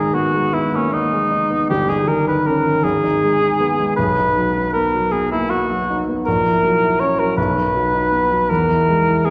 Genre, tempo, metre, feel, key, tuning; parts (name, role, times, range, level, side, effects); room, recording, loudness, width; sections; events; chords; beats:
classical, romantic duo for cor anglais and grand piano; 53 BPM (dotted quarters); 6/8; rubato; G# minor; A4 = 436 Hz
dark cor anglais; melody; 0.0-9.3 s; C#4 to C#5; -20 LUFS; equal
warm baby grand piano; accompaniment; 0.0-9.3 s; G1 to E4; -22 LUFS; equal
wet concert hall reverb, RT60 1.9 s; heard from further back in the room; -18 LUFS; mono
0.0-9.3 A section
0.0 G#m; 1.7 D#7/G; 2.8 G#m; 4.0 B; 6.3 F#7/A#; 7.4 B; 8.5 E
0.54 | 1.69 2.83 | 3.96 5.12 | 6.26 7.37 | 8.49